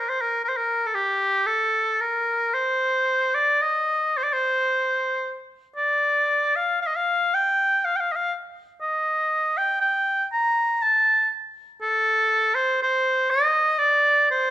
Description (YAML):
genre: celtic folk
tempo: 37-41 BPM (dotted quarters)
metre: 6/8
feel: rubato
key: unclear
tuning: A4 = 440 Hz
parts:
  - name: clear oboe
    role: solo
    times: 0.0-14.5 s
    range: G4 to Bb5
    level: -20 LUFS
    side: equal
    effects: none
room: moderate recital hall reverb, RT60 1.6 s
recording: minimal, uncompressed stereo recording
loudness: -20 LUFS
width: side -13 dB against mid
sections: 0.0-14.5 A section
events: none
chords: none